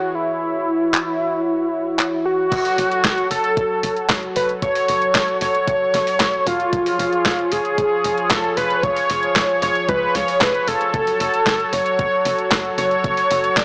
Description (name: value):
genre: italo disco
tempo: 114 BPM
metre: 4/4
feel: straight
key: unclear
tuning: A4 = 442 Hz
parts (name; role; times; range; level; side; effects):
- wide unison lead; melody; 0.0-13.6 s; E4 to D5; -18 LUFS; equal; cassette tape, analog delay
- warm analog pad; sustained chords; 0.0-13.6 s; E3 to C#5; -25 LUFS; equal; chorus
- clean 12-bit digital drum machine; drums; 0.9-13.6 s; crash cymbal, handclaps, hi-hat, snare drum; -21 LUFS; equal; overdrive
- tight sequencer bass; bass; 2.5-13.6 s; E1 to C#2; -31 LUFS; equal; none
- electronic kick drum; drums; 2.5-13.6 s; none; -26 LUFS; equal; overdrive
room: light reverb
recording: dry, gritty hardware recording, small speaker sound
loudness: -16 LUFS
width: side -34 dB against mid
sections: 0.0-2.5 A section; 2.5-13.6 B section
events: none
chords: 0.0 C#m/E; 2.5 F#m; 6.7 C#/E#; 10.9 F#m